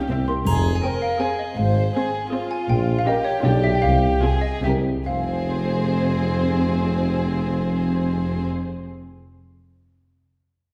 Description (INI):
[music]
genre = cinematic, playful, whimsical film cue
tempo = 137-163 BPM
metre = 3/4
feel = straight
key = F minor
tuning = A4 = 442 Hz
[part]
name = xylophone with rubber mallets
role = melody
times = 0.0-8.8 s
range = Db5 to C6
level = -29 LUFS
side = equal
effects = none
[part]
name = warm chamber violin section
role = second line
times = 0.0-8.5 s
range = F4 to C5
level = -30 LUFS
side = equal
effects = none
[part]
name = warm chamber viola section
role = accompaniment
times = 0.0-8.4 s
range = Bb3 to Ab4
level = -32 LUFS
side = equal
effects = none
[part]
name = warm chamber violin section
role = melody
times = 0.1-8.4 s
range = G4 to E5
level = -34 LUFS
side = equal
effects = none
[part]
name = dark chamber cello section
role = bass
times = 0.1-8.5 s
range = F2 to C3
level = -28 LUFS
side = equal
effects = none
[part]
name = dark chamber double bass section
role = bass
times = 0.1-8.4 s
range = F1 to C2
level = -28 LUFS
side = equal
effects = none
[part]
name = warm tuba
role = bass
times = 0.1-8.4 s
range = F1 to C2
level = -29 LUFS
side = equal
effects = none
[part]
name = triangle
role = percussion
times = 0.5-1.2 s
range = none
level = -45 LUFS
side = equal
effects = none
[sound]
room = wet scoring stage reverb, RT60 1.5 s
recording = heard from further back in the room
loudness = -22 LUFS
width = mono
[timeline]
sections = 0.0-5.1 A section; 5.1-7.7 B section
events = slowing down 2.1-5.1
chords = 0.1 C; 0.5 Fm; 1.6 Fm/Ab; 2.7 Gdim/Bb; 3.4 G7/B; 3.8 Fm/C; 4.6 C7; 5.1 Fm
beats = 0.09 | 0.46 0.83 1.20 | 1.57 1.94 2.31 | 2.68 3.06 3.44 | 3.82 4.22 4.64 | 5.07 5.50 5.94 | 6.38 6.81 7.25